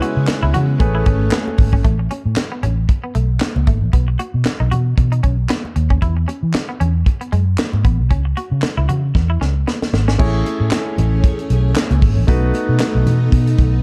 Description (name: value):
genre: early-eighties boogie funk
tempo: 115 BPM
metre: 4/4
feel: swing 56% on 16ths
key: A major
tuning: A4 = 440 Hz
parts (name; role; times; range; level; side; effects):
- clear grand piano; accompaniment; 0.0-1.8, 10.2-13.8 s; G#3 to C#5; -25 LUFS; equal; none
- string machine, violins; sustained chords; 0.0-1.8, 10.2-13.8 s; C#3 to G#4; -30 LUFS; equal; ensemble chorus
- clean electric guitar; riff; 0.0-10.2 s; G#3 to F#4; -30 LUFS; equal; lush chorus
- tight funk drum kit; drums; 0.0-13.7 s; crash cymbal, handclaps, hi-hat, kick drum, snare drum; -20 LUFS; equal; none
- congas; percussion; 0.0-13.5 s; none; -30 LUFS; equal; none
- vintage muted fingered electric bass; bass; 0.2-13.8 s; G#1 to E3; -18 LUFS; equal; none
room: little or no reverb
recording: dark, warm production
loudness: -17 LUFS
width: mono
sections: 0.0-1.8 A section; 1.8-10.2 B section; 10.2-13.8 A section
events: drum fill 9.2-10.2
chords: 0.0 C#m7; 0.8 Amaj9; 1.8 A; 3.9 B; 6.0 E69; 8.1 C#m; 10.2 Amaj7; 12.3 B7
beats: 0.28 0.80 1.32 | 1.85 2.37 2.89 3.41 | 3.93 4.46 4.98 5.50 | 6.02 6.54 7.06 7.58 | 8.11 8.63 9.15 9.67 | 10.19 10.72 11.24 11.76 | 12.28 12.80 13.32